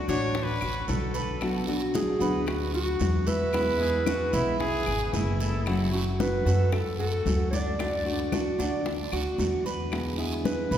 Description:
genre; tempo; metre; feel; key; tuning
latin, Cuban son and guajira; 113 BPM; 4/4; straight; unclear; A4 = 440 Hz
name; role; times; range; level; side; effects
mellow clarinet; melody; 0.0-10.8 s; F#4 to D5; -31 LUFS; equal; none
bright trumpet; second line; 0.0-6.1 s; E4 to C#5; -35 LUFS; left 2 dB; none
nylon-string guitar; accompaniment; 0.0-10.8 s; B2 to F#4; -32 LUFS; left 1 dB; none
Cuban tres; arpeggios; 0.0-10.8 s; D4 to B4; -33 LUFS; right 4 dB; none
upright bass; bass; 0.1-10.8 s; F#1 to F#2; -30 LUFS; equal; none
bongos; percussion; 0.1-10.8 s; none; -37 LUFS; left 3 dB; none
congas; percussion; 0.1-10.7 s; none; -36 LUFS; left 1 dB; none
guiro; percussion; 0.1-10.8 s; none; -40 LUFS; right 5 dB; none
claves; percussion; 0.6-10.2 s; none; -46 LUFS; left 4 dB; none
room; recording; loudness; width
wet church reverb, RT60 3.7 s; recorded in a church or concert hall; -24 LUFS; side -10 dB against mid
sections
0.0-10.8 A section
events
none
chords
0.0 D; 1.4 Bm; 3.5 E; 5.7 F#m; 7.8 D; 9.9 E7

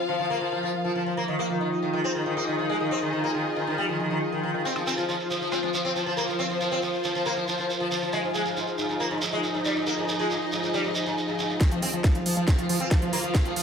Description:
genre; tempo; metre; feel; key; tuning
psychedelic trance; 138 BPM; 4/4; straight; F minor; A4 = 440 Hz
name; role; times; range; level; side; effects
bubbling stepped-filter texture; sustained chords; 0.0-13.6 s; F3 to F4; -31 LUFS; equal; chorus, built-in reverb, sidechain pumping
dark chamber string section; texture; 0.0-13.6 s; Eb4 to F5; -30 LUFS; left 2 dB; sidechain pumping
sitar; melody; 0.1-13.6 s; Ab2 to C4; -29 LUFS; left 1 dB; phaser, sidechain pumping, digital delay
shekere; percussion; 4.7-11.6 s; none; -32 LUFS; right 3 dB; none
metallic wobble bass; second line; 4.8-5.7 s; Ab3 to F4; -36 LUFS; equal; chorus, sidechain pumping, high-pass filter, dub echo
liquid acid bass; riff; 11.6-13.6 s; F3; -30 LUFS; moving between left 2 dB and right 10 dB; phaser, auto-pan, sidechain pumping
electronic kick drum; drums; 11.6-13.4 s; none; -23 LUFS; equal; none
garage drum kit; drums; 11.6-13.6 s; hi-hat, snare drum; -30 LUFS; right 1 dB; low-pass filter on hats, low-pass filter on snare, low-pass filter on cymbals, low-pass filter on room
room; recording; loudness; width
moderate digital room reverb, RT60 1.0 s; none; -24 LUFS; side -7 dB against mid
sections
0.0-11.6 A section; 11.6-13.6 B section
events
build-up 11.6-13.6; drum fill 11.6-13.6; filter sweep on acid bass 11.6-13.6; filter sweep 11.6-13.6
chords
0.0 F5

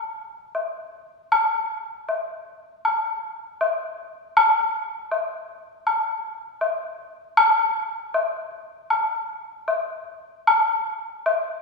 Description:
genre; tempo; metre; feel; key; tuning
chinese traditional; 79 BPM; 4/4; rubato; none; none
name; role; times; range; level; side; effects
woodblock; percussion; 0.5-11.4 s; none; -21 LUFS; left 2 dB; none
room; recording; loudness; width
wet recital hall reverb, RT60 1.8 s; recorded in a church or concert hall, studio ambience; -21 LUFS; side -3 dB against mid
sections
0.0-11.6 A section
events
none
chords
none

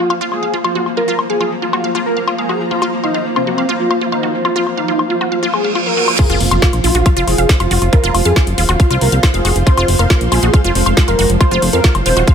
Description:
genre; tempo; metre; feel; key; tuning
psychedelic trance; 138 BPM; 4/4; straight; F minor; A4 = 440 Hz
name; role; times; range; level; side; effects
wide unison lead; melody; 0.0-12.3 s; C4 to C5; -19 LUFS; right 1 dB; phaser, sidechain pumping, dub echo
pulsing gated texture; sustained chords; 0.0-12.3 s; F3 to F4; -23 LUFS; left 2 dB; chorus, built-in reverb, sidechain pumping
wide unison pluck; riff; 0.0-12.3 s; F4 to F5; -21 LUFS; moving between left 3 dB and right 5 dB; auto-pan, sidechain pumping, dub echo
granular cloud pad; texture; 0.0-12.3 s; F4 to C6; -21 LUFS; right 1 dB; built-in reverb, sidechain pumping
garage drum kit; drums; 0.1-12.3 s; crash cymbal, hi-hat, snare drum, woodblock; -19 LUFS; left 3 dB; studio reverb
reverse cymbal and impact; sound effects; 5.5-7.9 s; none; -20 LUFS; right 3 dB; none
electronic kick drum; drums; 6.2-12.3 s; none; -11 LUFS; equal; studio reverb
fat analog bass; bass; 6.3-12.2 s; Eb1 to F2; -15 LUFS; equal; none
room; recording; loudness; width
light reverb; none; -12 LUFS; side -7 dB against mid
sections
0.0-6.2 A section; 6.2-12.3 B section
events
reverse cymbal 5.5-6.2; drop 6.2-12.3; impact 6.2-7.9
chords
0.0 F5

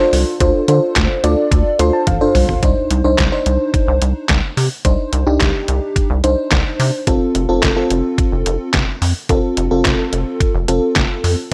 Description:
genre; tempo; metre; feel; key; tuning
synth-pop; 108 BPM; 4/4; straight; C dorian; A4 = 444 Hz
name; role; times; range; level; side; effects
FM electric piano with soft pad layer; accompaniment; 0.0-11.4 s; C4 to C6; -19 LUFS; equal; chorus
rubbery square bass; bass; 0.1-11.4 s; F1 to D3; -20 LUFS; equal; none
detuned 8-bit digital drum machine; drums; 0.1-11.4 s; handclaps, hi-hat, kick drum, snare drum, toms; -19 LUFS; equal; none
room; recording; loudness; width
light reverb, digital ambience; none; -16 LUFS; mono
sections
0.0-2.6 A section; 2.6-11.5 B section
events
FM electric piano fill 1.5-2.6; drum fill 2.1-2.6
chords
0.0 Dm7; 2.6 Cmadd9; 7.1 F

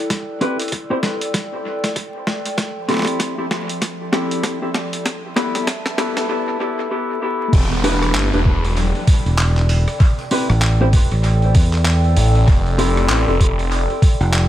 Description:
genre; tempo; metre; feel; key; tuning
glitch hop; 97 BPM; 4/4; swing 60% on 16ths; E phrygian; A4 = 439 Hz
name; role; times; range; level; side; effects
warbly tape-like pad; texture; 0.0-14.5 s; F3 to A5; -27 LUFS; equal; chorus, built-in reverb, sidechain pumping
boom bap sampler-style drum kit; drums; 0.1-14.5 s; crash cymbal, handclaps, hi-hat, rim click, snare drum; -24 LUFS; equal; dub echo
electronic kick drum; drums; 0.1-14.2 s; none; -14 LUFS; equal; high-pass filter on kick
mellow electric guitar; stabs; 0.4-13.3 s; B3 to C5; -22 LUFS; left 2 dB; sidechain pumping, dub echo
phased detuned saw bass; bass; 7.5-13.9 s; E1 to A1; -17 LUFS; equal; phaser
downlifter; sound effects; 7.5-12.5 s; none; -29 LUFS; right 1 dB; none
fingered electric bass; bass; 9.3-14.5 s; E1 to E2; -15 LUFS; equal; none
room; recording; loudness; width
light reverb, digital ambience; echo-heavy mix, vinyl crackle, high-pass filter; -15 LUFS; side -13 dB against mid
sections
0.0-7.5 A section; 7.5-14.5 B section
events
build-up 0.0-7.5; drum fill 0.0-6.3; drop 7.5-14.5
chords
0.1 A7(no3); 2.6 Fmaj7; 5.1 Gadd9; 7.5 Em7; 10.0 A7(no3); 12.5 Fmaj7

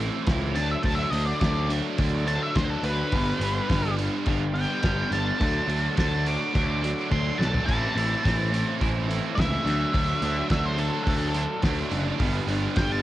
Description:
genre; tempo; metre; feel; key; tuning
indie rock; 106 BPM; 4/4; straight; unclear; A4 = 443 Hz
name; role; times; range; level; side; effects
string machine, cellos; sustained chords; 0.0-13.0 s; E4 to C6; -44 LUFS; equal; none
biting overdriven guitar; riff; 0.0-13.0 s; G2 to E4; -30 LUFS; right 8 dB; lush chorus, cassette tape
fuzz guitar; riff; 0.0-13.0 s; G2 to E4; -32 LUFS; left 7 dB; distortion, cassette tape
fuzz picked electric bass; bass; 0.0-13.0 s; F#1 to D2; -27 LUFS; equal; overdrive, tube saturation
cloth-damped thuddy drum kit; drums; 0.3-12.9 s; crash cymbal, hi-hat, kick drum, snare drum, splash cymbal, toms; -28 LUFS; equal; cassette tape
octave-fuzz lead guitar; melody; 0.6-13.0 s; A4 to D6; -30 LUFS; equal; distortion, cassette tape
room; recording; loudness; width
light reverb; home recording on cassette; -22 LUFS; side -14 dB against mid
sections
0.0-13.0 A section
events
lead electric guitar solo 0.0-13.0; drum fill 7.1-7.7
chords
0.0 Am; 0.6 D; 3.1 G; 5.4 D; 7.7 Am; 9.6 D; 12.2 G

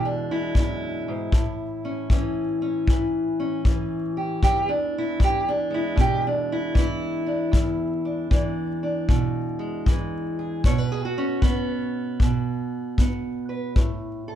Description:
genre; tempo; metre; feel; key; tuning
acoustic country blues, solo or duo; 77 BPM; 4/4; swing 65% on 8ths; E mixolydian; A4 = 439 Hz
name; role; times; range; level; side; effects
fingerpicked steel-string acoustic guitar; melody; 0.0-14.4 s; E2 to C#5; -24 LUFS; right 1 dB; none
kick drum; drums; 0.6-14.0 s; none; -21 LUFS; left 1 dB; none
room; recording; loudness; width
light reverb; dark, warm production; -22 LUFS; side -10 dB against mid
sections
0.0-14.4 A section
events
none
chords
0.0 E7; 1.3 A; 4.4 E7; 10.6 N.C.

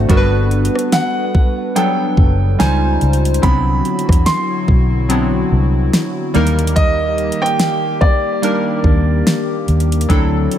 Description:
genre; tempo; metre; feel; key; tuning
contemporary R&B; 72 BPM; 4/4; swing 58% on 16ths; unclear; A4 = 441 Hz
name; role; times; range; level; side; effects
warm analog keys; accompaniment; 0.0-10.6 s; F#3 to F#5; -19 LUFS; equal; chorus
hollow soft pad; sustained chords; 0.0-10.6 s; C#3 to B#4; -23 LUFS; left 1 dB; chorus, sidechain pumping
vintage muted fingered electric bass; bass; 0.0-10.5 s; F#1 to E2; -15 LUFS; equal; none
smooth R&B drum kit; drums; 0.1-10.6 s; hi-hat, kick drum, rim click, snare drum; -15 LUFS; equal; overdrive
warm concert grand piano; melody; 0.9-10.6 s; D5 to C6; -20 LUFS; right 1 dB; ping-pong delay
room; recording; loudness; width
digital ambience; none; -12 LUFS; side -10 dB against mid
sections
0.0-10.6 A section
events
none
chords
0.1 Gmaj7; 2.6 C#maj9#11; 3.4 Cmaj9#11; 6.3 Ebmaj7

